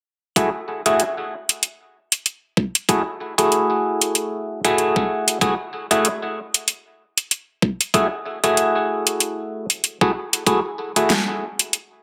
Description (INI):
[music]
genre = glitch hop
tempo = 95 BPM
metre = 4/4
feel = swing 57% on 16ths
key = F# minor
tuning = A4 = 439 Hz
[part]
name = overdriven clav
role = stabs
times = 0.4-11.1 s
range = A3 to G#4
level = -22 LUFS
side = equal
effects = phaser, sidechain pumping, low-pass filter, digital delay
[part]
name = dubstep drum kit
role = drums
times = 0.4-11.9 s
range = hi-hat, snare drum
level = -21 LUFS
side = equal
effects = none
[part]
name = electronic kick drum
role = drums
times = 0.4-10.6 s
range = none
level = -23 LUFS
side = equal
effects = high-pass filter on kick
[sound]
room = wet digital room reverb, RT60 1.1 s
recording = dense, heavily limited modern master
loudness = -21 LUFS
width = mono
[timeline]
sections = 0.4-12.0 A section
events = none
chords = 0.4 F#m9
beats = | 0.36 0.99 1.62 2.25 | 2.89 3.52 4.15 4.78 | 5.41 6.04 6.68 7.31 | 7.94 8.57 9.20 9.83 | 10.46 11.10 11.73